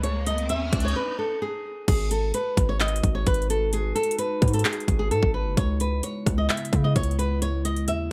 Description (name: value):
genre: hip hop, trap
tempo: 130 BPM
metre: 4/4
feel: half-time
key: G# phrygian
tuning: A4 = 443 Hz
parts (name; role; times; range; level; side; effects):
- flamenco guitar; melody; 0.0-8.1 s; G#4 to E5; -30 LUFS; equal; plate reverb
- hard-hitting 808-style bass; bass; 0.0-8.1 s; F#1 to C#3; -28 LUFS; equal; none
- trap drum kit; drums; 0.0-8.0 s; crash cymbal, handclaps, hi-hat, kick drum, rim click; -28 LUFS; equal; overdrive
- riser; sound effects; 0.0-1.0 s; none; -36 LUFS; equal; none
- warbly tape-like pad; sustained chords; 2.5-8.1 s; C#3 to B4; -36 LUFS; equal; chorus, built-in reverb
room: light reverb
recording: none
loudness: -25 LUFS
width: mono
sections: 0.0-1.9 A section; 1.9-8.1 B section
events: riser 0.0-1.9; break 1.0-1.9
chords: 0.0 C#5; 1.9 G#m7; 5.6 C#m7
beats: | 0.03 0.50 0.96 1.42 | 1.88 2.34 2.80 3.27 | 3.73 4.19 4.65 5.11 | 5.57 6.03 6.50 6.96 | 7.42 7.88